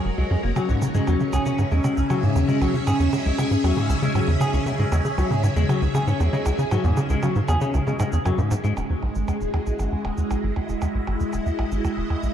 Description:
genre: ambient, sequencer-driven space music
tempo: 117 BPM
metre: 4/4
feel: straight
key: unclear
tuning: A4 = 440 Hz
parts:
  - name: phased string machine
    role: sustained chords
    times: 0.0-12.3 s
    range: C#3 to E5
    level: -25 LUFS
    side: equal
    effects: ensemble chorus, phaser, shimmer reverb
  - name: tight sequencer bass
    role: riff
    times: 0.1-12.3 s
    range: E1 to C#3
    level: -22 LUFS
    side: equal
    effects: analog delay
  - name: semi-hollow electric guitar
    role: arpeggios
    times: 0.2-12.2 s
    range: G#2 to G#4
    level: -28 LUFS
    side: left 2 dB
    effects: auto-pan, analog delay, shimmer reverb
  - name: cabasa and percussion blips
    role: percussion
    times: 0.6-12.3 s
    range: none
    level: -36 LUFS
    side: right 4 dB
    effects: analog delay
room: moderate plate reverb, RT60 2.6 s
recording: dark, warm production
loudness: -20 LUFS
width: side -9 dB against mid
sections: 0.0-8.8 A section; 8.8-12.3 B section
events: filter sweep on analog synth bass 0.0-8.8, 8.8-12.3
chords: 0.0 F#; 0.6 C#m; 8.8 Emaj7

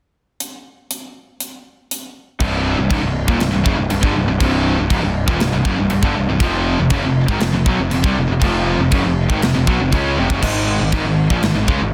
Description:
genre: heavy metal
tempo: 120 BPM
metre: 4/4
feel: straight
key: C phrygian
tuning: A4 = 439 Hz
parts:
  - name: tight metal drum kit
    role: drums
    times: 0.4-11.8 s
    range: china cymbal, crash cymbal, hi-hat, kick drum, snare drum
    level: -23 LUFS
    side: equal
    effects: none
  - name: raw garage guitar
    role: riff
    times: 2.4-11.9 s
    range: C2 to Db4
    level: -26 LUFS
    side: equal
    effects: overdrive
  - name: scooped high-gain guitar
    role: riff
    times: 2.4-11.9 s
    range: C2 to Db4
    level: -24 LUFS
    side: equal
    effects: distortion
  - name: tight distorted guitar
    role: riff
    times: 2.4-11.9 s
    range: C2 to Db4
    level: -24 LUFS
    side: equal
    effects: distortion
  - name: fuzz picked electric bass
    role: bass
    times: 2.4-11.9 s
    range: C1 to Db2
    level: -23 LUFS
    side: equal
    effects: overdrive
room: light reverb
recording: dense, heavily limited modern master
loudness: -17 LUFS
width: mono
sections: 0.4-2.4 A section; 2.4-11.9 B section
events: none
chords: 0.4 N.C.; 2.4 Cm; 6.4 F5; 10.4 Ab5

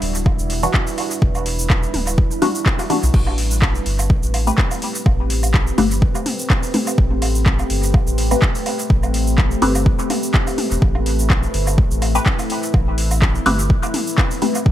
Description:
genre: dub techno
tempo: 125 BPM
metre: 4/4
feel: swing 55% on 16ths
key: unclear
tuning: A4 = 439 Hz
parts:
  - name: deep dark ambient pad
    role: sustained chords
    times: 0.0-14.7 s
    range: G3 to B4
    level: -25 LUFS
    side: equal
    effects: chorus, built-in reverb, sidechain pumping
  - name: filtered dub chord stab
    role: stabs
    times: 0.0-14.7 s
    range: E3 to B4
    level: -22 LUFS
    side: left 2 dB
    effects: phaser, sidechain pumping, dub echo
  - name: soft dub sub bass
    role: bass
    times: 0.0-14.7 s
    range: D1 to B1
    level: -20 LUFS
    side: equal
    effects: tube saturation, sidechain pumping
  - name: deep house drum kit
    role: drums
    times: 0.0-14.6 s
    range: cabasa, crash cymbal, handclaps, hi-hat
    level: -24 LUFS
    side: equal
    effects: overdrive, dub echo
  - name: electronic kick drum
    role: drums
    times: 0.3-14.7 s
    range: none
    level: -16 LUFS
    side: equal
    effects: overdrive
  - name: electronic woodblock and toms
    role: percussion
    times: 0.3-14.6 s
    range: none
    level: -28 LUFS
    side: right 2 dB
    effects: overdrive, sidechain pumping on perc, sidechain pumping on toms, dub echo
room: little or no reverb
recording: none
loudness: -15 LUFS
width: side -12 dB against mid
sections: 0.0-14.7 A section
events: none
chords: 0.0 Em9; 3.1 Am9

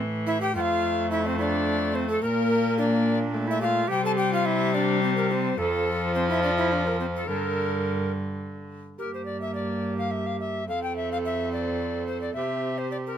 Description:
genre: classical, renaissance-style consort dance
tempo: 71 BPM (dotted quarters)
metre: 6/8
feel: straight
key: G dorian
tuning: A4 = 436 Hz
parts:
  - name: tenor recorder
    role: second line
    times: 0.0-13.2 s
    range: C4 to Bb4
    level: -30 LUFS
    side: right 6 dB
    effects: none
  - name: rich viola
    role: accompaniment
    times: 0.0-13.2 s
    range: D3 to C4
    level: -28 LUFS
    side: left 3 dB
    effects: none
  - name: rich cello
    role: bass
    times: 0.0-13.2 s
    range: F2 to C3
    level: -31 LUFS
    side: right 1 dB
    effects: none
  - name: bright tenor recorder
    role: melody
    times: 0.3-13.2 s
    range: A4 to A5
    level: -29 LUFS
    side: left 4 dB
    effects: none
room: little or no reverb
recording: close, detailed microphones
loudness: -23 LUFS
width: side -9 dB against mid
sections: 0.0-9.0 A section; 9.0-13.2 B section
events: none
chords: 0.0 A5; 0.5 F; 2.2 Bb; 3.9 C5; 5.6 F; 7.3 Gm; 10.7 F; 12.4 C

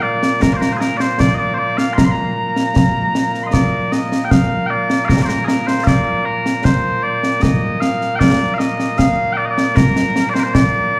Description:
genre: scottish traditional, Scottish pipe music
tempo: 77 BPM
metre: 3/4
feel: straight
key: Bb major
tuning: A4 = 437 Hz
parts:
  - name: mellow small bagpipes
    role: melody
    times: 0.0-11.0 s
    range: Bb2 to C6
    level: -20 LUFS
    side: equal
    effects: slapback echo
  - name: concert snare drum and concert bass drum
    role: drums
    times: 0.2-10.7 s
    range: none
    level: -18 LUFS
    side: equal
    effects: none
room: light reverb, small room ambience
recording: live gig heard through the venue's PA, club reverb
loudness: -16 LUFS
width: mono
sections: 0.0-3.5 A section; 3.5-11.0 A section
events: none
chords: none

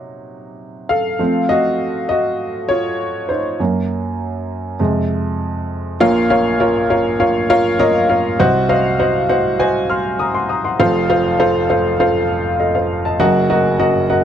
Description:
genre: pop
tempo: 100 BPM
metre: 4/4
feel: straight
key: Bb minor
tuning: A4 = 440 Hz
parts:
  - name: warm upright piano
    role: solo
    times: 0.0-14.2 s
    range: F1 to F6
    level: -14 LUFS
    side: equal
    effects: none
room: light reverb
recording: dry, close 1970s-style studio recording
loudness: -14 LUFS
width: side -9 dB against mid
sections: 0.0-6.0 A section; 6.0-14.2 B section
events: upright piano solo 0.0-6.0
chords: 0.0 Cdim; 1.2 F; 3.6 Gb; 4.8 Fm; 6.0 Bbm; 8.4 Cdim; 10.8 F; 13.2 Ebm/Gb

